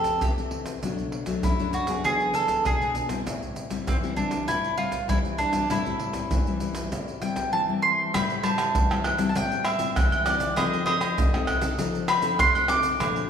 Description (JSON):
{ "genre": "samba and choro", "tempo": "99 BPM", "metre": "4/4", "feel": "straight", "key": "A minor", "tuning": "A4 = 441 Hz", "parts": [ { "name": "mandolin", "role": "melody", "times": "0.0-13.3 s", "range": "C4 to D6", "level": "-26 LUFS", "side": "right 1 dB", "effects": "none" }, { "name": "nylon-string guitar", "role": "accompaniment", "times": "0.0-13.3 s", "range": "F2 to A4", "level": "-29 LUFS", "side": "left 4 dB", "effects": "none" }, { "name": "egg shaker, surdo, pandeiro, agogo bells and tamborim", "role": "percussion", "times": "0.0-13.3 s", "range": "none", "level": "-27 LUFS", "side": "right 1 dB", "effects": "none" } ], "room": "wet recital hall reverb, RT60 1.5 s", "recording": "recorded in a church or concert hall", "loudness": "-22 LUFS", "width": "side -8 dB against mid", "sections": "0.0-8.1 A section; 8.1-13.3 B section", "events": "none", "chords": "0.0 Fmaj7; 0.8 Bm7; 2.0 E7; 3.3 Am7; 10.6 F7", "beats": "0.22 | 0.83 1.44 2.05 2.66 | 3.27 3.88 4.49 5.10 | 5.71 6.31 6.92 7.53 | 8.14 8.75 9.36 9.96 | 10.57 11.18 11.79 12.39 | 13.00" }